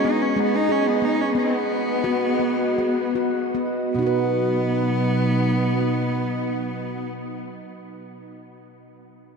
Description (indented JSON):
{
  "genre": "world meditative, meditative tuned percussion",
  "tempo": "145-190 BPM (eighths)",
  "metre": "7/8",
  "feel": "straight",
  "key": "B major pentatonic",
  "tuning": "A4 = 440 Hz",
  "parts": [
    { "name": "clear cello", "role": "melody", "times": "0.0-7.1 s", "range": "B3 to D#4", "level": "-25 LUFS", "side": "equal", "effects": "ping-pong delay" },
    { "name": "glassy FM pad", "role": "sustained chords", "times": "0.0-7.1 s", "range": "B2 to D#5", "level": "-25 LUFS", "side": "right 1 dB", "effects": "ensemble chorus, built-in reverb" },
    { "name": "handpan", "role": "arpeggios", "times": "0.0-7.2 s", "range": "B2 to B4", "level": "-25 LUFS", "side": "left 1 dB", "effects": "none" }
  ],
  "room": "wet huge ambient reverb, RT60 7.9 s",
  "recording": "dreamy mix soaked in reverb",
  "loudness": "-20 LUFS",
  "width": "side -5 dB against mid",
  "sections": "0.0-3.9 A section; 3.9-9.4 B section",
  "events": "slowing down 0.0-3.9",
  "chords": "0.0 G#m; 1.3 B"
}